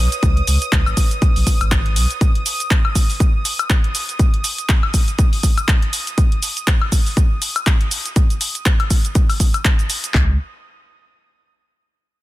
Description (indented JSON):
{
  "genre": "deep house",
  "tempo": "121 BPM",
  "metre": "4/4",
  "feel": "swing 57% on 16ths",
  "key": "unclear",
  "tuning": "A4 = 440 Hz",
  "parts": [
    { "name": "warm sub bass", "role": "bass", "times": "0.0-2.1, 10.1-10.4 s", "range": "G#1 to C#2", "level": "-17 LUFS", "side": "equal", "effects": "sidechain pumping" },
    { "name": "analog string pad", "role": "texture", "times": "0.0-10.2 s", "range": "D#6", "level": "-29 LUFS", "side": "right 2 dB", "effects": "ensemble chorus" },
    { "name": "punchy analog drum machine", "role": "drums", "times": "0.1-10.1 s", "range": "handclaps, hi-hat, shaker, woodblock", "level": "-21 LUFS", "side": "left 1 dB", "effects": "overdrive" },
    { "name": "house drum kit", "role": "drums", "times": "0.2-10.3 s", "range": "handclaps, kick drum", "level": "-15 LUFS", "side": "equal", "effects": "none" }
  ],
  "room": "little or no reverb",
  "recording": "dense, heavily limited modern master",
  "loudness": "-15 LUFS",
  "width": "side -17 dB against mid",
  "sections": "0.0-10.1 A section; 10.1-12.1 B section",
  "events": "none",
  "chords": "0.0 G#5; 2.2 N.C.",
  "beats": "| 0.23 0.72 1.22 1.72 | 2.21 2.71 3.20 3.70 | 4.19 4.69 5.19 5.68 | 6.18 6.67 7.17 7.67 | 8.16 8.66 9.15 9.65 | 10.14"
}